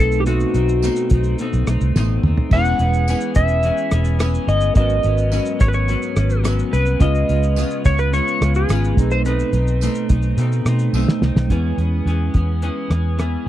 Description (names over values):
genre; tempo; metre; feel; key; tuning
indie pop, bedroom pop; 107 BPM; 4/4; straight; unclear; A4 = 437 Hz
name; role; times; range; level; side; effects
clean lap steel guitar; melody; 0.0-10.9 s; F#4 to F#5; -22 LUFS; left 1 dB; analog chorus
clean electric guitar; accompaniment; 0.0-13.5 s; G#2 to G#4; -24 LUFS; left 2 dB; lush chorus, vibrato effect
mellow tine electric piano; accompaniment; 0.0-13.5 s; G#3 to B4; -28 LUFS; right 6 dB; medium stereo tremolo, cassette tape
vintage muted fingered electric bass; bass; 0.0-13.5 s; E1 to B2; -18 LUFS; equal; none
cloth-damped thuddy drum kit; drums; 0.0-13.3 s; crash cymbal, hi-hat, kick drum, rim click, shaker, snare drum, toms; -18 LUFS; equal; none
tambourine; percussion; 0.8-11.1 s; none; -36 LUFS; right 19 dB; none
room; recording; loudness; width
little or no reverb; dry, close 1970s-style studio recording; -16 LUFS; side -13 dB against mid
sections
0.0-11.5 A section; 11.5-13.5 B section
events
drum fill 2.0-2.5, 10.9-11.5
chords
0.0 B7b9; 2.5 E6; 4.8 G#m11; 7.0 C#7; 9.0 B7b9; 11.5 E6